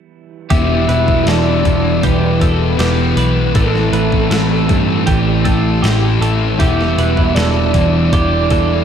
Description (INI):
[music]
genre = rock, shoegaze and dream pop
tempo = 79 BPM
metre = 4/4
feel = straight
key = E minor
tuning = A4 = 439 Hz
[part]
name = soft octave-layered synth lead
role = melody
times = 0.5-8.8 s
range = A4 to E5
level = -20 LUFS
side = right 1 dB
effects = chorus, analog delay
[part]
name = twelve-string electric guitar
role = arpeggios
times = 0.5-8.8 s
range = G4 to B4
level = -23 LUFS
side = right 4 dB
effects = lush chorus, analog delay
[part]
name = overdriven semi-hollow guitar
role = riff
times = 0.5-8.8 s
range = A2 to E4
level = -20 LUFS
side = right 8 dB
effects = reverse reverb
[part]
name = thick fuzz guitar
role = riff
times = 0.5-8.8 s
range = E2 to A3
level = -17 LUFS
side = left 6 dB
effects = distortion, analog chorus
[part]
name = vintage muted picked electric bass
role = bass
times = 0.5-8.8 s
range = E1 to G2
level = -17 LUFS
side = equal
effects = none
[part]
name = crisp 8-bit digital drum machine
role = drums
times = 0.5-8.7 s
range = hi-hat, kick drum, snare drum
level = -19 LUFS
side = equal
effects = none
[sound]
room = wet lush hall reverb, RT60 2.8 s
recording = dreamy mix soaked in reverb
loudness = -11 LUFS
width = side -8 dB against mid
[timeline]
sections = 0.5-8.8 A section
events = none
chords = 0.5 Em7; 3.5 Amadd9; 6.6 Em7